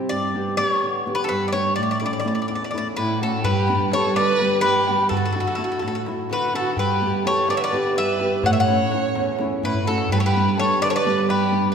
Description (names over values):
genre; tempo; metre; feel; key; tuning
greek folk, Greek bouzouki band; 252 BPM (eighths); 7/8; straight; unclear; A4 = 440 Hz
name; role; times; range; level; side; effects
flamenco guitar; accompaniment; 0.0-11.7 s; E2 to G4; -23 LUFS; right 1 dB; none
Greek bouzouki; melody; 0.1-11.7 s; A4 to F#5; -22 LUFS; left 2 dB; none
rich violin; second line; 3.0-11.7 s; E4 to C#5; -25 LUFS; right 4 dB; none
darbuka; percussion; 3.4-11.7 s; none; -28 LUFS; equal; none
room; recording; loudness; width
wet concert hall reverb, RT60 1.8 s; recorded in a church or concert hall; -19 LUFS; side -7 dB against mid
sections
0.0-3.4 A section; 3.4-11.7 B section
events
drum fill 9.6-10.1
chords
0.1 G; 1.8 A; 3.4 G; 5.1 Dadd9; 6.8 G6; 8.4 A; 10.1 G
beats
| 0.11 0.35 0.59 0.82 1.06 1.30 1.54 | 1.78 2.01 2.25 2.49 2.73 2.97 3.20 | 3.44 3.68 3.92 4.16 4.39 4.63 4.87 | 5.11 5.34 5.58 5.82 6.06 6.29 6.53 | 6.77 7.01 7.25 7.48 7.72 7.96 8.20 | 8.43 8.67 8.91 9.14 9.38 9.62 9.86 | 10.10 10.33 10.57 10.81 11.04 11.28 11.52